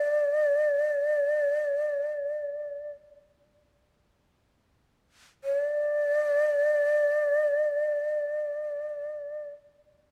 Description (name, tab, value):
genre	japanese traditional, Japanese chamber music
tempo	free time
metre	none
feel	none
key	unclear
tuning	A4 = 440 Hz
part	breathy hollow shakuhachi	solo	0.0-9.5 s	D5	-27 LUFS	equal	none
room	light reverb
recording	close, detailed microphones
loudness	-27 LUFS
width	mono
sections	0.0-5.4 A section; 5.4-10.1 B section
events	slowing down 0.0-5.4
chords	none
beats	free time